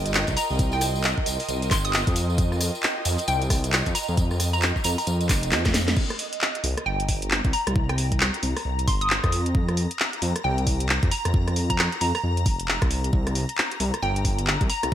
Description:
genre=UK garage, two-step garage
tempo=134 BPM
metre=4/4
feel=swing 61% on 16ths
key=C minor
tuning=A4 = 440 Hz
part: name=ethereal airy pad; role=sustained chords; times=0.0-14.9 s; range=Eb5 to Bb5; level=-34 LUFS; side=right 1 dB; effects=ensemble chorus, built-in reverb, phaser, sidechain pumping
part: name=dark detuned saw bass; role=bass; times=0.0-14.9 s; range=F1 to F2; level=-25 LUFS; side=equal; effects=none
part: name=dark chamber string section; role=texture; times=0.0-6.0 s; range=F4 to G5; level=-36 LUFS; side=equal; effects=sidechain pumping
part: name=garage drum kit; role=drums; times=0.1-14.9 s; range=crash cymbal, handclaps, hi-hat, rim click, snare drum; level=-26 LUFS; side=equal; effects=gated reverb
part: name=tambourine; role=percussion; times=0.1-5.9 s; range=none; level=-33 LUFS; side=left 2 dB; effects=none
part: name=electronic kick drum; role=drums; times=0.3-14.7 s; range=none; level=-24 LUFS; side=equal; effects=overdrive
part: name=hollow square pluck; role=melody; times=0.4-14.9 s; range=G5 to Eb6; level=-29 LUFS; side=equal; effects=analog chorus, ping-pong delay
room=light reverb, digital ambience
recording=bright 1980s-style digital production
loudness=-21 LUFS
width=side -11 dB against mid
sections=0.0-6.0 A section; 6.0-14.9 A section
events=drop 0.0-6.0, 6.0-14.9; drum fill 5.5-6.0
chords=0.0 Cm7; 2.2 F9sus4; 6.0 C5; 9.3 Fsus4; 13.1 C5

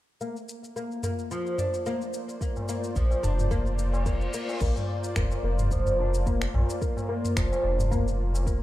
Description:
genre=organic downtempo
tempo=109 BPM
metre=4/4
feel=swing 55% on 16ths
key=Bb major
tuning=A4 = 441 Hz
part: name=warm analog pad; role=sustained chords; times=0.5-8.6 s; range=Bb3 to D5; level=-35 LUFS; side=equal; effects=chorus, sidechain pumping
part: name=oud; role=arpeggios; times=0.2-8.6 s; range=F3 to D4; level=-31 LUFS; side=left 1 dB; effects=low-pass filter, ping-pong delay
part: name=afro-pop drum kit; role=drums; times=0.2-8.6 s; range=crash cymbal, finger snaps, shaker, toms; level=-34 LUFS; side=equal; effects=studio reverb
part: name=electronic kick drum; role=drums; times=2.4-8.6 s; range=none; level=-30 LUFS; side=equal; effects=studio reverb
part: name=tabla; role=percussion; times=2.6-8.4 s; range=none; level=-35 LUFS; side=left 1 dB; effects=none
part: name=round analog bass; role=bass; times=3.0-8.6 s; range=F1 to Bb1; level=-26 LUFS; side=equal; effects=sidechain pumping
part: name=reverse cymbal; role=sound effects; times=3.8-4.6 s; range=none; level=-42 LUFS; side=left 2 dB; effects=none
room=digital ambience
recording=rough home demo mix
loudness=-25 LUFS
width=side -15 dB against mid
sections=0.2-4.6 A section; 4.6-8.6 B section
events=filter sweep on oud 0.2-4.6; reverse cymbal 3.8-4.6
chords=0.2 Bb

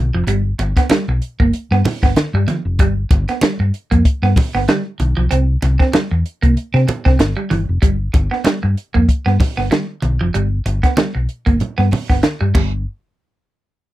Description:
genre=funk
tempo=95 BPM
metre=4/4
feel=swing 56% on 16ths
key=G mixolydian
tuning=A4 = 440 Hz
part: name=hollow-body short-scale fingered electric bass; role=bass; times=0.0-12.8 s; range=F1 to C3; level=-16 LUFS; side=left 1 dB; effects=none
part: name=clean electric guitar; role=riff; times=0.1-12.7 s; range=E3 to C4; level=-20 LUFS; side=right 3 dB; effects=none
part: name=compact cocktail drum kit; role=drums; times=0.3-12.7 s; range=crash cymbal, hi-hat, kick drum, snare drum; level=-15 LUFS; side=equal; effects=none
part: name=congas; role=percussion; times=0.3-12.8 s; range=none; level=-23 LUFS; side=right 2 dB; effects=none
room=little or no reverb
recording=dry, close 1970s-style studio recording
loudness=-14 LUFS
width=side -15 dB against mid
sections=0.0-7.8 A section; 7.8-12.9 B section; 12.9-13.9 C section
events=none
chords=0.0 G7; 5.3 C5; 7.8 G; 12.5 N.C.

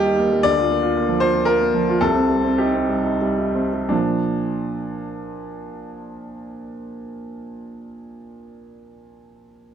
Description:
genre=neoclassical minimalist piano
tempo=86-119 BPM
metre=3/4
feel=rubato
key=Bb major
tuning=A4 = 444 Hz
part: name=warm baby grand piano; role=solo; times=0.0-9.7 s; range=C2 to D5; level=-19 LUFS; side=equal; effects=none
room=moderate stone room reverb, RT60 1.3 s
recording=dark, warm production, faint mains hum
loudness=-17 LUFS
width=side -8 dB against mid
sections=0.0-3.9 A section; 3.9-7.9 B section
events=slowing down 0.0-3.9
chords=0.5 Bb/D; 2.0 Cm; 3.9 Bb

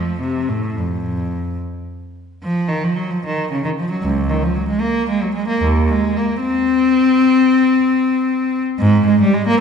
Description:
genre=classical, baroque-style suite movement for unaccompanied cello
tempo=71-78 BPM (dotted quarters)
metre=12/8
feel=rubato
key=unclear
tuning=A4 = 440 Hz
part: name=clear cello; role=solo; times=0.0-9.6 s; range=Db2 to C4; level=-15 LUFS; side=left 1 dB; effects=none
room=wet recital hall reverb, RT60 1.6 s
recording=heard from further back in the room, nothing above 10.9 kHz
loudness=-15 LUFS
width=side -6 dB against mid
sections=0.0-9.6 A section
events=none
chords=none

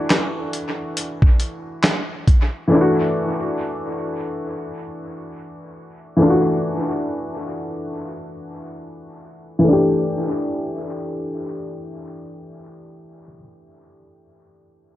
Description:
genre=lo-fi hip hop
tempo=69 BPM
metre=4/4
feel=swing 59% on 16ths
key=E minor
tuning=A4 = 439 Hz
part: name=felt-muted upright piano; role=accompaniment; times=0.0-15.0 s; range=E3 to G4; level=-20 LUFS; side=left 1 dB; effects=cassette tape, low-pass filter, dub echo
part: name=dusty soul sampler-style drum kit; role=drums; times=0.1-2.5 s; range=handclaps, hi-hat, kick drum, snare drum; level=-17 LUFS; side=equal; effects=dub echo
room=light reverb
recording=echo-heavy mix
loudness=-18 LUFS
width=side -14 dB against mid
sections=0.0-9.7 A section; 9.7-13.1 B section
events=filter sweep on felt piano 0.0-9.7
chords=0.0 E9sus4; 9.7 Em7

